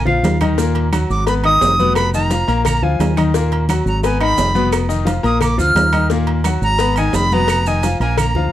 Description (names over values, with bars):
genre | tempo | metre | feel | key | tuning
latin, salsa | 174 BPM | 4/4 | straight | Eb harmonic minor | A4 = 440 Hz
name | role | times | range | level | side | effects
bright reedy silver concert flute | melody | 0.0-8.5 s | F5 to F6 | -18 LUFS | right 1 dB | none
fingered electric bass | bass | 0.0-8.5 s | F1 to Eb2 | -18 LUFS | right 1 dB | none
bright baby grand piano | accompaniment | 0.1-8.5 s | Bb2 to Cb6 | -20 LUFS | left 5 dB | none
congas | percussion | 0.1-8.5 s | none | -24 LUFS | equal | none
cowbell | percussion | 0.2-8.3 s | none | -25 LUFS | left 11 dB | none
maracas | percussion | 0.2-8.4 s | none | -33 LUFS | right 12 dB | none
timbales and agogo bells | percussion | 0.2-8.3 s | none | -26 LUFS | right 7 dB | none
claves | percussion | 0.4-8.4 s | none | -33 LUFS | right 9 dB | none
room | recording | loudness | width
light reverb | dry, close 1970s-style studio recording | -13 LUFS | side -12 dB against mid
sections
0.0-8.5 A section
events
none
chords
0.0 Bb5; 0.6 Ebm; 1.3 Abm; 2.0 Bmaj7#11/E#; 2.7 Bb7; 3.3 Ebm; 4.0 Abm; 4.7 Bmaj7#11/E#; 5.4 Bb; 6.1 Ebm; 6.8 Abm; 7.5 Fm7b5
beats
0.24 | 0.58 0.93 1.28 1.62 | 1.97 2.31 2.66 3.00 | 3.35 3.69 4.04 4.38 | 4.73 5.07 5.42 5.76 | 6.11 6.45 6.80 7.14 | 7.49 7.83 8.18